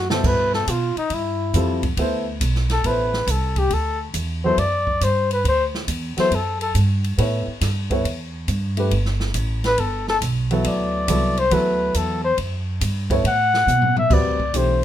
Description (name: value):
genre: jazz, small-group swing and bop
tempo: 138 BPM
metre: 4/4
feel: swing 68% on 8ths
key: D mixolydian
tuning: A4 = 440 Hz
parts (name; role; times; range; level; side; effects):
- mellow flugelhorn; melody; 0.0-6.7, 9.7-14.8 s; Eb4 to F#5; -21 LUFS; left 2 dB; none
- upright bass; bass; 0.0-14.8 s; G1 to B2; -22 LUFS; right 1 dB; none
- warm baby grand piano; accompaniment; 0.1-14.8 s; B2 to C#5; -23 LUFS; equal; none
- open jazz drum kit; drums; 0.1-14.7 s; crash cymbal, hi-hat, kick drum, ride cymbal, snare drum, toms; -27 LUFS; equal; none
room: light reverb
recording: minimal, uncompressed stereo recording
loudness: -18 LUFS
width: side -11 dB against mid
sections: 0.0-14.1 A section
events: drum fill 0.0, 13.7-14.1; flugelhorn solo 0.0-14.8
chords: 0.2 G9; 3.7 Dadd9; 7.2 A9; 8.9 Gadd9; 10.6 D9; 13.2 Asus2; 14.1 D9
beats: | 0.24 0.67 1.11 1.54 | 1.98 2.41 2.85 3.28 | 3.71 4.15 4.58 5.01 | 5.45 5.88 6.32 6.75 | 7.18 7.62 8.05 8.48 | 8.91 9.35 9.78 10.21 | 10.65 11.08 11.51 11.95 | 12.38 12.81 13.24 13.68 | 14.11 14.54